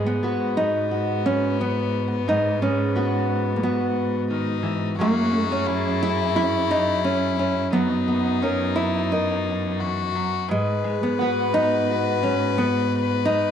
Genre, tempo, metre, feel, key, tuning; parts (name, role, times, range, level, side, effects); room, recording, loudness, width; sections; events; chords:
acoustic folk-pop ballad; 88 BPM; 4/4; straight; G# minor; A4 = 439 Hz
nylon-string guitar; melody; 0.0-13.5 s; G#3 to E4; -23 LUFS; right 1 dB
rich violin; second line; 0.0-13.5 s; B3 to B4; -27 LUFS; left 12 dB
fingerpicked steel-string acoustic guitar; accompaniment; 0.0-13.5 s; G#2 to B4; -28 LUFS; equal
rich cello; bass; 0.0-13.5 s; F#2 to G#2; -28 LUFS; right 1 dB
electric guitar through a small old amp; arpeggios; 11.2-11.9 s; B3; -30 LUFS; right 14 dB; harmonic tremolo, tape echo
moderate spring reverb, RT60 2.0 s, small room reverb; 1960s-style stereo with parts hard left and right; -20 LUFS; side -8 dB against mid
0.0-13.5 A section
0.0 G#m7; 5.0 F#sus2; 7.7 Bmaj7/F#; 10.5 G#m7